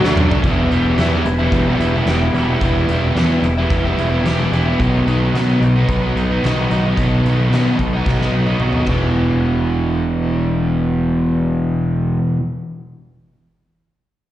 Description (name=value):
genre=quiet-loud alternative rock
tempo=110 BPM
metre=4/4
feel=straight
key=E harmonic minor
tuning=A4 = 442 Hz
part: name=overdriven electric guitar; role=riff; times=0.0-12.4 s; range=E2 to E4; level=-18 LUFS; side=equal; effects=none
part: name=fuzz picked electric bass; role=bass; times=0.0-12.2 s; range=E1 to B2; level=-18 LUFS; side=equal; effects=overdrive
part: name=huge arena drum kit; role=drums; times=0.0-9.0 s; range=crash cymbal, hi-hat, kick drum, snare drum, toms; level=-23 LUFS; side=equal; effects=vintage 12-bit sampler grit
part: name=twelve-string electric guitar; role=arpeggios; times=0.5-12.4 s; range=E2 to G4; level=-25 LUFS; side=right 1 dB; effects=none
room=light reverb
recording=live gig heard through the venue's PA, cassette tape, recital hall reverb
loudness=-14 LUFS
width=side -13 dB against mid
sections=0.4-9.2 A section; 9.2-13.5 B section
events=drum fill 0.0-0.4, 8.1-9.2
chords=0.4 Em; 4.8 B; 8.9 Em